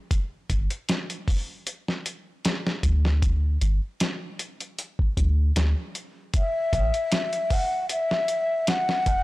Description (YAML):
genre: trip hop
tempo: 77 BPM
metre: 4/4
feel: swing 54% on 16ths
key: unclear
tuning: A4 = 441 Hz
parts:
  - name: dusty soul sampler-style drum kit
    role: drums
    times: 0.1-9.2 s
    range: hi-hat, kick drum, snare drum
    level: -26 LUFS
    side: equal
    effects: studio reverb
  - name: soft 808-style bass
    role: bass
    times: 0.5-9.2 s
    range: E1 to D2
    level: -22 LUFS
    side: equal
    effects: tube saturation
  - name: breathy mellow concert flute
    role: melody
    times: 6.4-9.2 s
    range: E5 to F#5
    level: -24 LUFS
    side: left 1 dB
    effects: vintage 12-bit sampler grit
room: light reverb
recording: blown-out, overdriven recording, overdrive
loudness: -23 LUFS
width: side -19 dB against mid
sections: 0.0-9.2 A section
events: none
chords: 0.1 N.C.; 6.3 A5